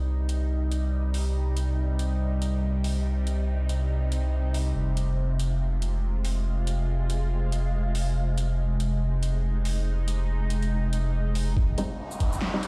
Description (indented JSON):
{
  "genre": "deep dubstep",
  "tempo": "141 BPM",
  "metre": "4/4",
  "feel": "swing 58% on 16ths, half-time",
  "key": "C minor",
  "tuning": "A4 = 440 Hz",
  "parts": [
    { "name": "bowed-like drone", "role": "sustained chords", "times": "0.0-12.7 s", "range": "C3 to F4", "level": "-35 LUFS", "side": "equal", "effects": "built-in reverb, phaser" },
    { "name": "saturated sub bass", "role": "bass", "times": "0.0-11.5 s", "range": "F1 to C2", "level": "-28 LUFS", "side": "equal", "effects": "none" },
    { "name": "dubstep drum kit", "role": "drums", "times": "0.3-12.7 s", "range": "hi-hat, shaker, snare drum", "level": "-40 LUFS", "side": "equal", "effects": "none" },
    { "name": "electronic kick drum", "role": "drums", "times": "11.6-12.3 s", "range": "none", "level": "-28 LUFS", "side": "equal", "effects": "none" },
    { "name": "riser", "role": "sound effects", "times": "11.9-12.7 s", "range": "none", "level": "-38 LUFS", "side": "equal", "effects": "none" },
    { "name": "filtered dub chord stab", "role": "stabs", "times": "11.8-12.6 s", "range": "G3 to Eb4", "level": "-34 LUFS", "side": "equal", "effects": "chorus, dub echo" }
  ],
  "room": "digital ambience",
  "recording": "played on a big sound system in a bare room, stone room reverb",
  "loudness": "-27 LUFS",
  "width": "mono",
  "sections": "0.0-11.6 A section; 11.6-12.7 B section",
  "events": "build-up 11.6-12.7; riser 11.9-12.7",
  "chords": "0.0 Cm; 4.8 Fm; 11.6 Cm",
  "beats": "0.08 0.50 0.93 | 1.35 1.78 2.21 2.63 | 3.06 3.48 3.91 4.33 | 4.76 5.18 5.61 6.03 | 6.46 6.88 7.31 7.74 | 8.16 8.59 9.01 9.44 | 9.86 10.29 10.71 11.14 | 11.57 11.99 12.42"
}